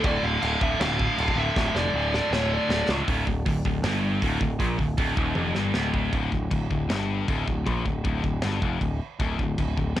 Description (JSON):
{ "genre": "heavy metal", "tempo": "157 BPM", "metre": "4/4", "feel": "straight", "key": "D minor", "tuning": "A4 = 440 Hz", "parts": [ { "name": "high-gain lead guitar", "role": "melody", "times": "0.0-2.9 s", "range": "C#5 to F5", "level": "-29 LUFS", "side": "right 1 dB", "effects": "distortion, tape echo" }, { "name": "scooped high-gain guitar", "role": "riff", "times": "0.0-10.0 s", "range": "D2 to D3", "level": "-29 LUFS", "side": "left 6 dB", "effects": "distortion, cassette tape" }, { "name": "scooped high-gain guitar", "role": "riff", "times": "0.0-6.1 s", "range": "D2 to D3", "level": "-30 LUFS", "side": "right 10 dB", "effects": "distortion, cassette tape" }, { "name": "overdriven picked electric bass", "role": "bass", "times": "0.0-10.0 s", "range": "D1 to C#2", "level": "-28 LUFS", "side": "equal", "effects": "none" }, { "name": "modern studio drum kit", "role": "drums", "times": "0.0-10.0 s", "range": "china cymbal, crash cymbal, hi-hat, kick drum, snare drum, toms", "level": "-29 LUFS", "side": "equal", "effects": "none" } ], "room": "studio ambience", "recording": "home recording on cassette", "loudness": "-23 LUFS", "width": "side -12 dB against mid", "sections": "0.0-3.1 A section; 3.1-6.1 B section; 6.1-10.0 C section", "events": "drum fill 1.6-3.1, 5.4-6.1", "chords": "0.0 Dm; 6.1 N.C.", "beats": "| 0.05 0.43 0.81 1.19 | 1.56 1.94 2.32 2.70 | 3.08 3.46 3.84 4.22 | 4.60 4.99 5.37 5.75 | 6.13 6.51 6.90 7.28 | 7.67 8.05 8.43 8.81 | 9.20 9.58 9.96" }